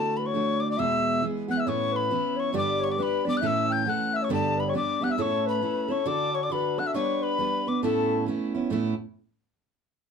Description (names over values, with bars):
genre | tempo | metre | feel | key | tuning
celtic folk | 136 BPM | 2/4 | swing 62% on 8ths | A mixolydian | A4 = 441 Hz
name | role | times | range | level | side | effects
wooden whistle | melody | 0.0-8.2 s | A5 to G6 | -29 LUFS | left 2 dB | none
wooden flute | second line | 0.0-8.2 s | A4 to G5 | -29 LUFS | left 7 dB | none
picked steel-string acoustic guitar | accompaniment | 0.0-8.9 s | E2 to B4 | -27 LUFS | right 3 dB | none
room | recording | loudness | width
moderate small room reverb, RT60 0.5 s | dark, warm production | -24 LUFS | side -6 dB against mid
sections
0.0-1.7 A section; 1.7-8.7 B section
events
none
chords
0.0 D; 0.8 E; 1.7 Aadd9; 2.5 G; 3.4 A; 4.3 G; 5.2 A; 6.1 D; 7.0 G; 7.8 Aadd9